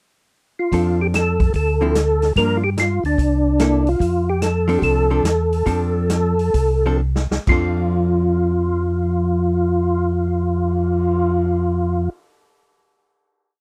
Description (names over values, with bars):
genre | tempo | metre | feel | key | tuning
soul jazz organ trio | 124-147 BPM | 4/4 | swing 66% on 8ths | F major | A4 = 440 Hz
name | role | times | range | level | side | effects
percussive tonewheel organ | melody | 0.6-12.1 s | D4 to Bb4 | -22 LUFS | equal | chorus vibrato, slow rotary speaker
hollow-body jazz guitar | accompaniment | 0.7-12.3 s | D3 to A4 | -26 LUFS | equal | none
mellow tonewheel organ | bass | 0.7-12.1 s | C2 to G2 | -22 LUFS | equal | slow rotary speaker
vintage drum kit | drums | 0.7-11.2 s | crash cymbal, cymbal swell, hi-hat, kick drum, snare drum | -24 LUFS | equal | none
room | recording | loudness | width
little or no reverb | dry, close 1970s-style studio recording | -19 LUFS | mono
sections
0.0-0.7 pickup bar; 0.7-7.5 A section; 7.5-11.3 final chord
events
slowing down 4.0-7.5; drum fill 7.0-7.5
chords
0.0 N.C.; 0.7 F6; 1.5 Dm9; 2.4 Gm7; 3.2 C13; 4.0 F6